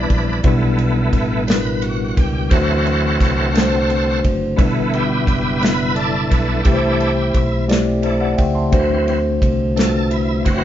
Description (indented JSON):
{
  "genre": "slow gospel",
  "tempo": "58 BPM (dotted quarters)",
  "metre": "6/8",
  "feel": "straight",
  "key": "G major",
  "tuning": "A4 = 440 Hz",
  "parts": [
    { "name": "mellow tine electric piano", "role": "accompaniment", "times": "0.0-10.6 s", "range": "B2 to C6", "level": "-19 LUFS", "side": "left 1 dB", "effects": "medium stereo tremolo" },
    { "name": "bright tonewheel organ", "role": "sustained chords", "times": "0.0-10.6 s", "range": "E3 to B4", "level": "-22 LUFS", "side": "right 2 dB", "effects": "slow rotary speaker, chorus vibrato" },
    { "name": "fingered electric bass", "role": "bass", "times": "0.0-10.6 s", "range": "F#1 to D2", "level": "-22 LUFS", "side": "equal", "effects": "none" },
    { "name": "natural country drum kit", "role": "drums", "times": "0.1-10.6 s", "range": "kick drum, ride cymbal, snare drum", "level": "-18 LUFS", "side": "equal", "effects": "none" }
  ],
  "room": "moderate studio reverb, RT60 0.8 s",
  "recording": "band playing live in one room, nothing above 7.5 kHz",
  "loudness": "-14 LUFS",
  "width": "side -11 dB against mid",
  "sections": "0.0-10.6 A section",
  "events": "tonewheel organ solo 0.0-10.6",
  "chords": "0.4 G6; 2.5 D7; 4.6 G6; 6.7 C6; 8.7 D7",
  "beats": "| 0.44 1.48 | 2.52 3.55 | 4.58 5.62 | 6.66 7.69 | 8.73 9.77"
}